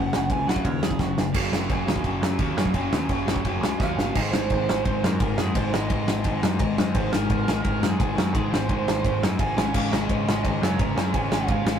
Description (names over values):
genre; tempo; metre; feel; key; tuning
punk rock; 172 BPM; 4/4; straight; Ab mixolydian from 4.2 s; A4 = 441 Hz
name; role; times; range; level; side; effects
biting lead guitar; melody; 0.0-1.2, 3.8-11.8 s; Gb4 to Bb5; -30 LUFS; right 5 dB; overdrive
distorted electric guitar; riff; 0.0-11.8 s; Gb2 to Db4; -29 LUFS; left 4 dB; distortion
distorted electric guitar; riff; 0.0-4.1, 9.8-11.8 s; Gb2 to Db4; -36 LUFS; right 6 dB; none
overdriven electric guitar; riff; 0.0-11.8 s; Gb2 to Db4; -31 LUFS; right 1 dB; none
growling picked electric bass; bass; 0.0-11.8 s; Gb1 to Gb2; -28 LUFS; right 1 dB; overdrive
loose indie drum kit; drums; 0.1-11.7 s; crash cymbal, kick drum, ride cymbal, snare drum; -25 LUFS; equal; none
room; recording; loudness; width
light reverb; rough rehearsal-room recording; -21 LUFS; side -8 dB against mid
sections
0.0-1.3 A section; 1.3-4.2 B section; 4.2-11.8 C section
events
lead electric guitar solo 0.0-1.3; drum fill 1.0-1.3, 3.8-4.2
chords
0.0 Gb5; 4.2 Ab; 9.6 Db/Ab